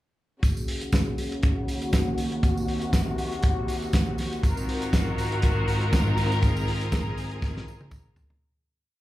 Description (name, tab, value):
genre	disco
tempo	120 BPM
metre	4/4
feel	swing 56% on 16ths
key	Eb dorian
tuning	A4 = 440 Hz
part	clear studio string section	sustained chords	0.4-8.4 s	Eb2 to Bb4	-27 LUFS	equal	low-pass filter
part	warm soul drum kit	drums	0.4-8.4 s	hi-hat, kick drum, snare drum, toms	-25 LUFS	equal	none
part	tambourine	percussion	0.4-8.3 s	none	-45 LUFS	right 3 dB	none
room	light reverb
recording	live gig heard through the venue's PA, club reverb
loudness	-23 LUFS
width	side -16 dB against mid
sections	0.4-8.4 breakdown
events	filter sweep on string section 0.4-8.4; fade-out 6.4-8.4; drum fill 7.4-8.4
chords	0.4 Ebm7; 4.4 Ab13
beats	| 0.43 0.93 1.43 1.93 | 2.43 2.93 3.43 3.93 | 4.43 4.93 5.43 5.93 | 6.43 6.92 7.42 7.92